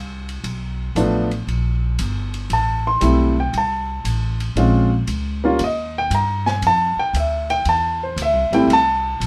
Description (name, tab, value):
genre	jazz piano trio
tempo	116 BPM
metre	4/4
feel	swing 68% on 8ths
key	F major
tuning	A4 = 444 Hz
part	warm baby grand piano	melody	0.0-9.3 s	F3 to C6	-20 LUFS	equal	none
part	upright bass	bass	0.0-9.3 s	G1 to G2	-24 LUFS	equal	none
part	open jazz drum kit	drums	0.3-9.3 s	hi-hat, ride cymbal, snare drum	-35 LUFS	equal	none
room	moderate small room reverb, RT60 0.5 s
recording	none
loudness	-19 LUFS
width	mono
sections	0.0-9.3 A section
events	grand piano solo 0.0-9.3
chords	0.4 Bm7b5; 1.5 Gm; 2.5 Am7; 4.6 Bbm7; 5.6 Eb; 6.6 Fmaj9